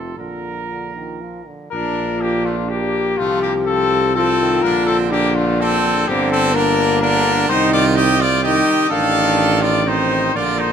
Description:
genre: classical, brass quintet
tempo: 125 BPM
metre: 3/4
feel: rubato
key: Bb major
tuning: A4 = 440 Hz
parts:
  - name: warm trumpet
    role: melody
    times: 0.0-10.7 s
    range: F4 to C6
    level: -20 LUFS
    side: left 6 dB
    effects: none
  - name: bright trumpet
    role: second line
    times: 0.0-10.7 s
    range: A3 to Bb4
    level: -22 LUFS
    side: right 7 dB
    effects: none
  - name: brilliant trombone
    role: accompaniment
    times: 0.0-10.7 s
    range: C3 to D4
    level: -25 LUFS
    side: right 4 dB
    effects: none
  - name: mellow French horn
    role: accompaniment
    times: 0.0-10.7 s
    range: Bb3 to G4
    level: -21 LUFS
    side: left 4 dB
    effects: none
  - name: dark tuba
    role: bass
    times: 0.0-10.7 s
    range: F1 to C2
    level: -22 LUFS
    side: right 5 dB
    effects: none
room: moderate concert hall reverb, RT60 1.8 s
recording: none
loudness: -14 LUFS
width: side -8 dB against mid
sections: 0.0-1.7 A section; 1.7-10.7 A section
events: none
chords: 0.2 Bb; 3.2 F7/C; 4.6 Bb; 6.1 Gm; 7.5 Cm; 8.9 F7/A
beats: | 0.18 0.70 1.21 | 1.72 2.22 2.71 | 3.20 3.67 4.16 | 4.64 5.12 5.60 | 6.08 6.55 7.01 | 7.49 7.96 8.44 | 8.91 9.39 9.87 | 10.35

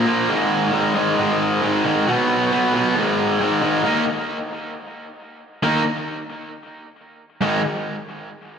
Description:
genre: rock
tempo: 135 BPM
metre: 4/4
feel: straight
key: unclear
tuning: A4 = 439 Hz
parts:
  - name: cranked stack guitar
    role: solo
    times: 0.0-7.6 s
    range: Ab2 to Eb4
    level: -18 LUFS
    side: equal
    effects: overdrive, slapback echo, tape echo
room: wet lush hall reverb, RT60 1.6 s, digital ambience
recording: big arena sound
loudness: -17 LUFS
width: side -7 dB against mid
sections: 0.0-3.9 A section; 3.9-8.6 B section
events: half time 3.9-8.6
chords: 0.3 Ab5; 2.1 Cb5; 3.0 Ab5; 3.9 Eb5; 7.4 Ab5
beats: | 0.31 0.75 1.20 1.64 | 2.08 2.53 2.97 3.42 | 3.86 4.31 4.75 5.20 | 5.64 6.09 6.54 6.98 | 7.42

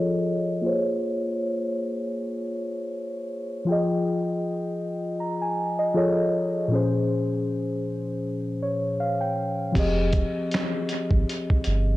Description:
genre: lo-fi hip hop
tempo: 79 BPM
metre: 4/4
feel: swing 56% on 16ths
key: Bb dorian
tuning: A4 = 439 Hz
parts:
  - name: muted felt-like synth keys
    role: accompaniment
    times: 0.0-12.0 s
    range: Bb2 to Bb5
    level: -24 LUFS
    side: left 1 dB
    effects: chorus, cassette tape, low-pass filter
  - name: warm sub bass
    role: bass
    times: 9.8-12.0 s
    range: F1 to Ab1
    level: -24 LUFS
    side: right 1 dB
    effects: none
  - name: lo-fi sampler-style drum kit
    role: drums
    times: 9.8-11.8 s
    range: crash cymbal, finger snaps, hi-hat, kick drum, snare drum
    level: -25 LUFS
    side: right 1 dB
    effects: dub echo
room: moderate spring reverb, RT60 2.7 s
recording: echo-heavy mix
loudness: -23 LUFS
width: side -16 dB against mid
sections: 0.0-9.8 A section; 9.8-12.0 B section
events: filter sweep on synth keys 0.0-9.8; synth keys fill 8.2-9.8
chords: 0.0 F7alt; 0.6 Bbm9; 3.7 Fm9; 6.0 F7alt; 6.7 Bbm9; 9.8 Fm9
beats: | 0.64 1.40 2.16 2.92 | 3.68 4.44 5.20 5.96 | 6.72 7.47 8.23 8.99 | 9.75 10.51 11.27

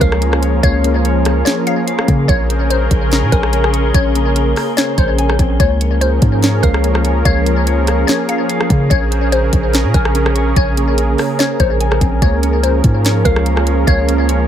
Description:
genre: hip hop, atmospheric cloud-rap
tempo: 145 BPM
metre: 4/4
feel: half-time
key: Db major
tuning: A4 = 440 Hz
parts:
  - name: glassy wavetable pluck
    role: melody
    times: 0.0-14.5 s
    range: Bb4 to F5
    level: -21 LUFS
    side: left 2 dB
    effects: chorus, low-pass filter, tape echo
  - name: warm analog pad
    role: sustained chords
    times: 0.0-14.5 s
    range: Db3 to Bb4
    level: -18 LUFS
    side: right 2 dB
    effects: chorus, sidechain pumping
  - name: mellow electric guitar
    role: arpeggios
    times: 0.0-14.5 s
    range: Bb3 to Db6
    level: -23 LUFS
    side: left 4 dB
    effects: low-pass filter, tape echo
  - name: long sustained 808-style bass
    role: bass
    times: 0.0-14.5 s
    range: Bb1 to Db3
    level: -15 LUFS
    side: equal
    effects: none
  - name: smooth R&B drum kit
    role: drums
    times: 0.0-14.4 s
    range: hi-hat, kick drum, rim click, snare drum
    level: -16 LUFS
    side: equal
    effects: none
  - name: wind-like tuned noise texture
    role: texture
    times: 0.0-5.6, 12.9-14.5 s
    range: Ab3 to C6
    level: -28 LUFS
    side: left 3 dB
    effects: built-in reverb
room: digital ambience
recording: echo-heavy mix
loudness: -12 LUFS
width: side -10 dB against mid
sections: 0.0-5.6 A section; 5.6-14.5 A section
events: none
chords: 0.0 Db6; 2.3 Bbm9; 5.6 Db6; 8.9 Bbm9; 12.2 Db6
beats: 0.22 | 0.63 1.05 1.46 1.88 | 2.29 2.70 3.12 3.53 | 3.94 4.36 4.77 5.19 | 5.60 6.01 6.43 6.84 | 7.25 7.67 8.08 8.50 | 8.91 9.32 9.74 10.15 | 10.56 10.98 11.39 11.81 | 12.22 12.63 13.05 13.46 | 13.88 14.29

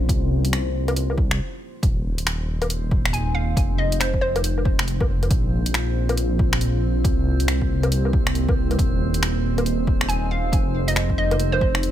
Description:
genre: future garage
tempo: 138 BPM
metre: 4/4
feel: swing 62% on 16ths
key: unclear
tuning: A4 = 440 Hz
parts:
  - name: deep dark ambient pad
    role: sustained chords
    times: 0.0-11.9 s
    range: Ab3 to Eb5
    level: -30 LUFS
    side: equal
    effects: chorus, built-in reverb, sidechain pumping
  - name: dark detuned saw bass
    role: bass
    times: 0.0-11.9 s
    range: Eb1 to C2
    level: -23 LUFS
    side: equal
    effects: sidechain pumping
  - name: deep house drum kit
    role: drums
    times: 0.1-11.9 s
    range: finger snaps, hi-hat, woodblock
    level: -26 LUFS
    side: left 1 dB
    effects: overdrive, small room ambience
  - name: electronic kick drum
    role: drums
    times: 0.1-11.7 s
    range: none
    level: -22 LUFS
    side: equal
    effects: overdrive, small room ambience
  - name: drifting glass-harmonics texture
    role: texture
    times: 2.4-11.9 s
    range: C4 to C5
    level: -32 LUFS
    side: equal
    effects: chorus, built-in reverb
  - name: hollow square pluck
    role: melody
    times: 3.1-4.7, 10.1-11.9 s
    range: C5 to Ab5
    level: -26 LUFS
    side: right 2 dB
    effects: chorus, digital delay
room: little or no reverb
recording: none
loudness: -19 LUFS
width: side -11 dB against mid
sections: 0.0-1.8 A section; 1.8-11.9 A section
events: stop 1.4-1.8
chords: 0.1 C7; 1.8 Ebsus4; 3.6 Fm7; 5.3 Bbsus2; 7.0 C7; 8.8 Ebsus4; 10.5 Fm7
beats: | 0.09 0.53 0.96 1.40 | 1.83 2.27 2.70 3.14 | 3.57 4.00 4.44 4.88 | 5.31 5.75 6.18 6.61 | 7.05 7.48 7.92 8.35 | 8.79 9.22 9.66 10.09 | 10.53 10.96 11.40 11.83

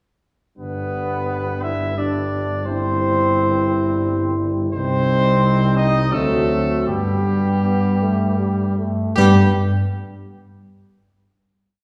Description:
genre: classical, brass quintet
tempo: 76-87 BPM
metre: 3/4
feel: rubato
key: G major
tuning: A4 = 440 Hz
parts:
  - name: clear trumpet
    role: melody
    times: 0.6-9.5 s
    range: G4 to E5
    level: -26 LUFS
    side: equal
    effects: none
  - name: warm trumpet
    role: second line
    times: 0.6-9.5 s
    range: G3 to E4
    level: -29 LUFS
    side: equal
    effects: none
  - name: warm French horn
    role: accompaniment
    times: 0.6-9.5 s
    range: B3 to E4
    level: -28 LUFS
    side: equal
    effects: none
  - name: warm trombone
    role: accompaniment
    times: 0.6-9.5 s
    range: F#3 to B3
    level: -28 LUFS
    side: equal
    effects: none
  - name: mellow tuba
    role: bass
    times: 0.6-9.5 s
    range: G1 to G2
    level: -22 LUFS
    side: equal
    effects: none
room: wet recital hall reverb, RT60 1.7 s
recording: heard from further back in the room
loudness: -19 LUFS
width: mono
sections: 0.6-9.2 A section; 9.2-11.4 final chord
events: none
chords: 0.6 G; 2.7 C/G; 4.7 Cm; 6.1 D7; 6.9 G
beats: | 0.58 1.28 1.98 | 2.67 3.36 4.05 | 4.74 5.43 6.13 | 6.88 7.64 8.40 | 9.17

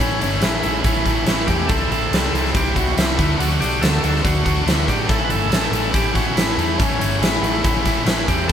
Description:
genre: classic rock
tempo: 141 BPM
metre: 4/4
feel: straight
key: A mixolydian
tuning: A4 = 443 Hz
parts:
  - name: overdriven tonewheel organ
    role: melody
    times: 0.0-8.5 s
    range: C#4 to B4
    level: -24 LUFS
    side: right 1 dB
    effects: slow rotary speaker
  - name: distorted electric guitar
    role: riff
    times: 0.0-8.5 s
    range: A2 to F#4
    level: -24 LUFS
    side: left 8 dB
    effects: overdrive
  - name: tight distorted guitar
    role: riff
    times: 0.0-8.5 s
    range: A2 to F#4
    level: -25 LUFS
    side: right 7 dB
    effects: distortion
  - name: hollow-body short-scale fingered electric bass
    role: bass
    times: 0.0-8.5 s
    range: G1 to A2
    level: -23 LUFS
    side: equal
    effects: none
  - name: huge arena drum kit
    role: drums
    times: 0.2-8.5 s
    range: hi-hat, kick drum, snare drum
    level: -20 LUFS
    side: equal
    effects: none
room: light reverb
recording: band playing live in one room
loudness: -16 LUFS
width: side -9 dB against mid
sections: 0.0-8.5 A section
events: none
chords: 0.0 A; 1.7 C; 3.2 D; 5.1 A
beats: 0.41 0.84 1.26 | 1.69 2.11 2.54 2.96 | 3.39 3.81 4.24 4.67 | 5.09 5.51 5.94 6.36 | 6.79 7.21 7.64 8.06 | 8.49

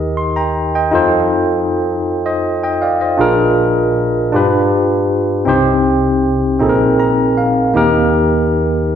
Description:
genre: gospel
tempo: 53 BPM (dotted quarters)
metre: 6/8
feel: straight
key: Eb major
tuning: A4 = 445 Hz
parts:
  - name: barky tine electric piano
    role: solo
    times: 0.0-9.0 s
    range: Bb1 to C6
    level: -12 LUFS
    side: equal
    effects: medium stereo tremolo
room: wet recital hall reverb, RT60 1.5 s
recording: recorded in a church or concert hall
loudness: -12 LUFS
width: side -9 dB against mid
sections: 0.0-9.0 A section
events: tine electric piano fill 6.6-7.8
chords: 0.0 Eb; 0.9 F7; 3.2 Bb7; 4.3 G7; 5.5 Cm; 6.6 Bb9sus4; 7.8 Eb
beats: | 0.93 2.07 | 3.21 4.34 | 5.48 6.62 | 7.76 8.89

